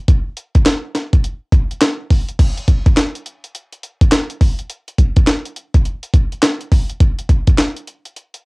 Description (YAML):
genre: R&B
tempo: 104 BPM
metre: 4/4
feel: swing 63% on 16ths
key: none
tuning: none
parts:
  - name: breakbeat sampler-style drum kit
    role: drums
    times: 0.1-8.4 s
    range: crash cymbal, handclaps, hi-hat, kick drum, snare drum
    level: -12 LUFS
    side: equal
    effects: overdrive, cassette tape
room: light reverb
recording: home recording on cassette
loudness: -13 LUFS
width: side -31 dB against mid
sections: 0.0-2.4 A section; 2.4-8.4 B section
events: none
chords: none